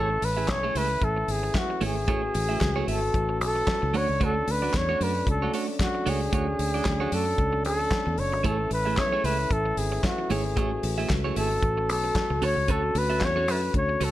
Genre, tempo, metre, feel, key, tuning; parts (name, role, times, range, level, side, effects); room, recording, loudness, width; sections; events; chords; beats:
disco; 113 BPM; 4/4; swing 56% on 16ths; A major; A4 = 437 Hz
breathy flugelhorn; melody; 0.0-14.1 s; F#4 to C#5; -27 LUFS; equal
clean electric guitar; accompaniment; 0.0-14.1 s; A3 to E5; -32 LUFS; right 6 dB; spring reverb
dark French horn section; sustained chords; 0.0-14.1 s; D3 to F#4; -33 LUFS; left 2 dB
fingered electric bass; bass; 0.0-14.1 s; F#1 to F#2; -29 LUFS; equal
damped 70s drum kit; drums; 0.2-14.1 s; handclaps, hi-hat, kick drum, snare drum; -30 LUFS; equal; gated reverb
small room ambience; -23 LUFS; side -14 dB against mid
0.0-14.1 A section
0.0 Amaj7; 3.9 Dmaj7; 8.4 Amaj7; 12.4 Dmaj7
0.49 1.02 1.55 | 2.08 2.61 3.14 3.67 | 4.20 4.74 5.27 5.80 | 6.33 6.86 7.39 7.92 | 8.45 8.98 9.51 10.04 | 10.57 11.10 11.63 12.16 | 12.69 13.22 13.74